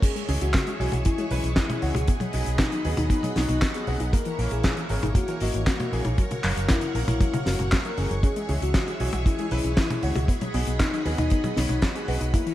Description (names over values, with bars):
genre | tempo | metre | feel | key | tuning
italo disco | 117 BPM | 4/4 | straight | unclear | A4 = 440 Hz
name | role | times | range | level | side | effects
soft octave-layered synth lead | melody | 0.0-12.5 s | D#4 to A#4 | -31 LUFS | left 3 dB | chorus, tremolo, digital delay
string machine, full ensemble | sustained chords | 0.0-12.5 s | E4 to C#6 | -35 LUFS | equal | ensemble chorus, vintage 12-bit sampler grit
warbly dusty pluck | arpeggios | 0.0-12.5 s | F#2 to C#5 | -34 LUFS | left 2 dB | chorus, vintage 12-bit sampler grit, ping-pong delay
damped 70s drum kit | drums | 0.0-12.5 s | crash cymbal, handclaps, hi-hat, snare drum, toms | -28 LUFS | left 1 dB | gated reverb
kick drum | drums | 0.0-12.4 s | none | -23 LUFS | equal | none
clear baby grand piano | stabs | 0.3-12.3 s | E3 to D#5 | -34 LUFS | right 3 dB | none
fingered electric bass with an envelope filter | bass | 0.3-12.3 s | F#1 to D#2 | -27 LUFS | equal | none
room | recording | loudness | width
light reverb, studio ambience | bright 1980s-style digital production, vinyl crackle | -22 LUFS | side -14 dB against mid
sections
0.0-12.5 A section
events
none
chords
0.0 C#m; 2.1 B6; 4.1 A#dim; 6.2 F#; 8.2 C#m; 10.3 B6